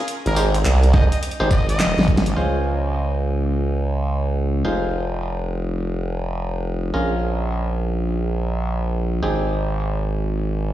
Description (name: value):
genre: glitch hop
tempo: 105 BPM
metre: 4/4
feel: swing 63% on 16ths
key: unclear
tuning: A4 = 440 Hz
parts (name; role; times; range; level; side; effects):
- brilliant trumpet; melody; 0.0-2.1 s; Bb4 to Eb5; -29 LUFS; equal; tape echo
- dubstep drum kit; drums; 0.1-2.3 s; handclaps, hi-hat, snare drum, tambourine; -23 LUFS; left 1 dB; small room reverb
- formant-sweep wobble bass; bass; 0.3-10.7 s; F1 to Db2; -20 LUFS; right 1 dB; chorus, tube saturation
- bright clav; stabs; 0.4-10.7 s; C4 to C5; -27 LUFS; equal; sidechain pumping, tape echo
- electronic kick drum; drums; 0.9-2.2 s; none; -17 LUFS; equal; small room reverb
room: light reverb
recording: played on a big sound system in a bare room, stone room reverb, studio reverb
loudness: -19 LUFS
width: side -13 dB against mid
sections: 0.0-2.4 A section; 2.4-10.7 B section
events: drum fill 1.8-2.4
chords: 0.1 Abmaj7; 2.4 Dbmaj7; 4.7 Fm7; 6.9 Bbm7; 9.2 Abmaj7